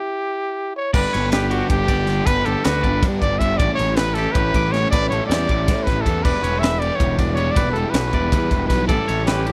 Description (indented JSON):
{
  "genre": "math rock and midwest emo",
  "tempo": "317 BPM (eighths)",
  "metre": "7/8",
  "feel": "straight",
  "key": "G lydian",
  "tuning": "A4 = 440 Hz",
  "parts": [
    { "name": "breathy trumpet", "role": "melody", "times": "0.0-9.5 s", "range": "F#4 to E5", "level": "-25 LUFS", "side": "equal", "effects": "slapback echo" },
    { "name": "mellow electric guitar", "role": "accompaniment", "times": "0.0-0.9 s", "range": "E4", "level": "-41 LUFS", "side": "equal", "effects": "spring reverb" },
    { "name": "twangy electric guitar", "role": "arpeggios", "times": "0.9-9.5 s", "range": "F#4 to D6", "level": "-30 LUFS", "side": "equal", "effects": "none" },
    { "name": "biting overdriven guitar", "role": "riff", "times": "0.9-9.5 s", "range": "G2 to E4", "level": "-29 LUFS", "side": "equal", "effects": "none" },
    { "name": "fuzz picked electric bass", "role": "bass", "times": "0.9-9.5 s", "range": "E1 to A2", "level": "-25 LUFS", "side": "equal", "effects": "overdrive" },
    { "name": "crisp fusion drum kit", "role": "drums", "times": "0.9-9.5 s", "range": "crash cymbal, kick drum, ride cymbal, snare drum", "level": "-24 LUFS", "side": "equal", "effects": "none" }
  ],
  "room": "little or no reverb",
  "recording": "none",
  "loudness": "-19 LUFS",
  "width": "mono",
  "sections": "1.0-9.5 A section",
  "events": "stop 0.0-1.0",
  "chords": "0.0 N.C.; 1.0 G; 3.6 A7sus4; 6.2 Em7; 8.9 A7sus4",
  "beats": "0.00 0.19 0.38 0.57 0.76 | 0.95 1.14 1.33 1.52 1.71 1.90 2.09 | 2.28 2.47 2.66 2.85 3.04 3.22 3.41 | 3.60 3.79 3.98 4.17 4.36 4.55 4.74 | 4.93 5.12 5.30 5.49 5.68 5.87 6.06 | 6.25 6.44 6.63 6.82 7.01 7.20 7.38 | 7.57 7.76 7.95 8.14 8.33 8.52 8.71 | 8.90 9.09 9.28 9.46"
}